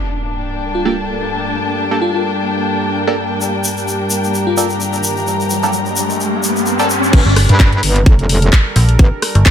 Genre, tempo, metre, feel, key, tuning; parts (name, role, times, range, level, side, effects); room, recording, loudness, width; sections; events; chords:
bass house; 129 BPM; 4/4; swing 55% on 16ths; G minor; A4 = 440 Hz
sweeping resonant pad; sustained chords; 0.0-9.5 s; G2 to Bb4; -22 LUFS; equal; chorus, sidechain pumping
sub drop and riser; sound effects; 0.0-7.1 s; -20 LUFS; left 1 dB
muted studio string section; texture; 0.0-7.1 s; Bb3 to Bb5; -20 LUFS; left 2 dB; sidechain pumping
bell-like FM electric piano; melody; 0.7-4.7 s; F4; -22 LUFS; left 2 dB; chorus, tremolo, ping-pong delay
band-passed chord stab; stabs; 0.9-6.9 s; Bb3 to A4; -22 LUFS; right 3 dB; phaser, sidechain pumping, ping-pong delay
egg shaker; percussion; 3.4-7.1 s; -21 LUFS; left 2 dB
metallic wobble bass; bass; 7.1-9.1 s; F1 to G2; -13 LUFS; equal; chorus, tube saturation, sidechain pumping
electronic kick drum; drums; 7.1-9.5 s; -9 LUFS; equal; studio reverb
garage drum kit; drums; 7.1-9.5 s; crash cymbal, handclaps, hi-hat, rim click; -18 LUFS; left 1 dB; studio reverb
metallic FM bass; bass; 7.3-9.4 s; G1 to Bb1; -10 LUFS; equal; tube saturation, sidechain pumping
light reverb; -12 LUFS; side -9 dB against mid
0.0-7.1 A section; 7.1-9.5 B section
impact 0.0-1.6; riser 5.0-7.1; drop 7.1-9.5
0.0 Gmadd9